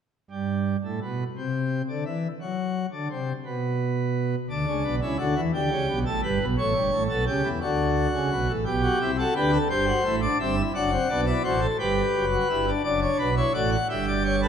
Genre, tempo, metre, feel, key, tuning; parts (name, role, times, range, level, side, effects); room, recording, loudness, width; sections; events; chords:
classical, baroque-style 3-part fugue for pipe organ; 57 BPM (dotted quarters); 6/8; straight; G major; A4 = 440 Hz
pipe organ, plenum; solo; 0.3-14.5 s; F#1 to F#5; -23 LUFS; equal
wet scoring stage reverb, RT60 1.8 s; -23 LUFS; side -8 dB against mid
0.3-14.5 A section
0.3 N.C.; 4.5 D; 5.5 Gadd9; 6.6 A7; 7.6 D; 8.7 G/B; 9.7 Am7/G; 10.8 D7/F#; 11.8 G; 12.9 D/F#; 13.9 Em7/G